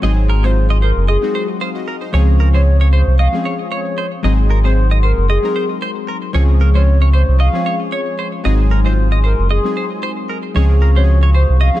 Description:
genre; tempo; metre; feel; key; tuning
afrobeats; 114 BPM; 4/4; swing 55% on 16ths; Db major; A4 = 439 Hz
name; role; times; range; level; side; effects
warm analog keys; accompaniment; 0.0-11.8 s; F3 to F5; -22 LUFS; left 3 dB; chorus
mellow hollow flute section; sustained chords; 0.0-11.8 s; Ab4 to Db6; -28 LUFS; left 6 dB; none
direct-recorded clean electric guitar; riff; 0.0-11.7 s; Bb4 to Eb5; -25 LUFS; right 5 dB; wide subtle chorus, tape echo
sub bass with octave; bass; 0.0-11.7 s; Gb1 to Db2; -11 LUFS; equal; none
hollow clarinet-like synth lead; melody; 0.4-11.8 s; Ab4 to F5; -23 LUFS; equal; chorus, tape echo
room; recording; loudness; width
digital ambience; echo-heavy mix; -12 LUFS; side -14 dB against mid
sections
0.0-11.8 A section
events
none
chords
0.0 Ab7; 2.1 Dbmaj7; 4.2 Ab7; 6.3 Dbmaj7; 8.4 Ab7; 10.6 Dbmaj7

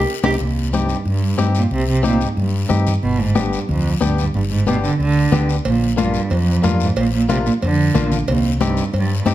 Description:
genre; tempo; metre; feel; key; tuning
latin, cumbia; 183 BPM; 4/4; straight; C minor; A4 = 440 Hz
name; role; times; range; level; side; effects
hollow-body short-scale fingered electric bass; bass; 0.0-9.3 s; G1 to G2; -20 LUFS; equal; none
warm cello; melody; 0.2-9.2 s; Eb2 to G4; -19 LUFS; right 3 dB; none
direct-recorded clean electric guitar; accompaniment; 0.2-9.3 s; Bb3 to G4; -23 LUFS; left 5 dB; none
congas; percussion; 0.2-9.3 s; none; -23 LUFS; left 4 dB; none
guiro; percussion; 0.2-9.3 s; none; -33 LUFS; left 9 dB; none
timbales and cowbell; percussion; 0.2-0.3, 5.7-9.3 s; none; -28 LUFS; right 3 dB; none
room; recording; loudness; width
moderate large studio reverb, RT60 0.8 s; none; -15 LUFS; side -13 dB against mid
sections
0.4-9.3 A section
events
drum fill 0.0-0.4; band accent 0.0-0.4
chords
0.4 Cm; 3.0 G; 5.7 Bb; 8.3 Cm

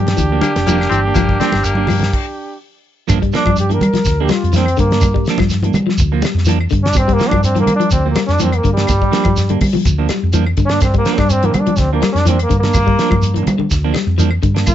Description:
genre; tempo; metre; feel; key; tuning
afrobeat; 124 BPM; 4/4; straight; G dorian; A4 = 441 Hz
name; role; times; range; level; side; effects
bright trumpet; melody; 0.0-2.6 s; G4; -21 LUFS; equal; none
breathy trumpet; second line; 0.0-2.6 s; D4; -24 LUFS; right 8 dB; none
clean electric guitar; arpeggios; 0.0-14.6 s; D3 to G3; -21 LUFS; left 10 dB; none
hollow-body short-scale fingered electric bass; bass; 0.0-14.7 s; F1 to G3; -16 LUFS; equal; none
semi-hollow electric guitar; stabs; 0.1-14.7 s; F3 to D4; -22 LUFS; right 11 dB; none
damped 70s drum kit; drums; 0.1-14.7 s; crash cymbal, hi-hat, kick drum, snare drum; -19 LUFS; equal; none
congas; percussion; 0.1-14.7 s; none; -22 LUFS; right 2 dB; none
shekere; percussion; 0.2-14.7 s; none; -21 LUFS; right 1 dB; none
raspy baritone saxophone; second line; 0.4-2.1 s; Bb3 to C4; -21 LUFS; left 5 dB; none
claves; percussion; 0.4-14.7 s; none; -30 LUFS; left 6 dB; none
clear trombone; melody; 3.4-14.7 s; G3 to Bb4; -18 LUFS; equal; slapback echo
room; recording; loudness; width
little or no reverb; nothing above 7.9 kHz; -12 LUFS; side -11 dB against mid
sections
0.0-3.1 A section; 3.1-14.7 B section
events
stop 2.1-3.1; trombone solo 3.1-14.7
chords
0.0 Gm7

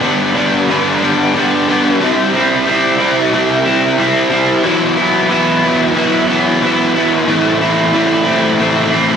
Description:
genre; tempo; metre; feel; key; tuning
rock; 91 BPM; 4/4; straight; E minor; A4 = 440 Hz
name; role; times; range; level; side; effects
biting overdriven guitar; solo; 0.0-9.2 s; G2 to E4; -11 LUFS; equal; lush chorus, analog delay
room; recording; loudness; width
wet recital hall reverb, RT60 1.8 s, digital ambience; none; -11 LUFS; side -7 dB against mid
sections
0.0-9.2 A section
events
none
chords
0.0 G; 2.0 C; 4.6 Esus2; 7.3 Am

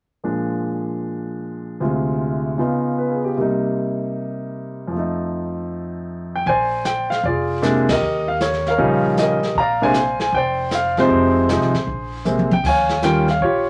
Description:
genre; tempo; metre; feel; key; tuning
jazz piano trio; 155 BPM; 4/4; swing 67% on 8ths; Bb mixolydian; A4 = 440 Hz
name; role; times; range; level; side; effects
warm concert grand piano; melody; 0.2-13.7 s; D2 to Bb5; -21 LUFS; equal; none
upright bass; bass; 6.5-13.7 s; F1 to Eb2; -30 LUFS; equal; none
jazz brush drum kit; drums; 6.5-13.7 s; brushed snare drum, crash cymbal, hi-hat, kick drum, ride cymbal, snare drum, toms; -28 LUFS; equal; none
room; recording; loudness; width
moderate studio reverb, RT60 0.5 s; none; -20 LUFS; mono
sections
0.2-6.5 A section; 6.5-13.7 B section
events
band accent 7.8; drum fill 12.3-12.6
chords
0.2 Bb7; 1.8 Dm7b5; 2.6 Db9; 3.4 Cm7; 4.9 F7; 6.5 Bb9; 8.0 Eb9; 9.6 Bb9; 11.1 Fm7; 11.9 Bbsus2; 12.6 Eb9

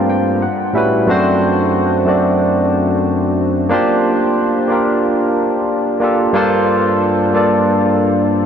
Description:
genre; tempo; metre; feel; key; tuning
R&B; 91 BPM; 4/4; swing 63% on 16ths; unclear; A4 = 441 Hz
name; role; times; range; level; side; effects
barky tine electric piano; solo; 0.0-8.5 s; F#2 to Bb5; -12 LUFS; equal; lush chorus, analog delay
room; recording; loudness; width
wet huge ambient reverb, RT60 7.7 s; dreamy mix soaked in reverb; -12 LUFS; side -8 dB against mid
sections
0.0-8.5 A section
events
tine electric piano fill 0.0-1.1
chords
0.4 A13; 1.1 D7/F#; 3.7 Bb6; 6.4 Gm11

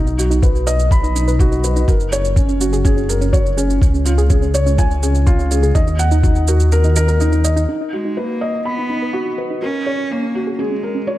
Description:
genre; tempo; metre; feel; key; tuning
piano and strings electronica; 124 BPM; 4/4; straight; unclear; A4 = 441 Hz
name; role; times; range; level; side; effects
soft round pluck; arpeggios; 0.0-11.1 s; Db4 to B4; -26 LUFS; right 3 dB; chorus, sidechain pumping, tape echo
felt-muted upright piano; riff; 0.0-11.2 s; Db4 to B5; -20 LUFS; left 1 dB; low-pass filter, tape echo
dark detuned saw bass; bass; 0.0-7.7 s; Gb1 to Eb2; -16 LUFS; equal; sidechain pumping
shaker; drums; 0.1-7.7 s; none; -28 LUFS; right 6 dB; overdrive
electronic kick drum; drums; 0.4-6.3 s; none; -14 LUFS; equal; none
rich cello; melody; 7.9-11.2 s; Ab3 to Db4; -22 LUFS; right 1 dB; none
room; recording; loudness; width
light reverb; none; -14 LUFS; side -15 dB against mid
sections
0.0-7.7 A section; 7.7-11.2 B section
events
kick drops out 6.7-7.7; filter sweep on felt piano 7.7-11.2; filter sweep on synth arpeggio sound 7.7-11.2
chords
0.0 B; 1.9 Gbadd9; 3.8 Db; 5.8 Ebm; 7.7 B; 9.6 Gbadd9

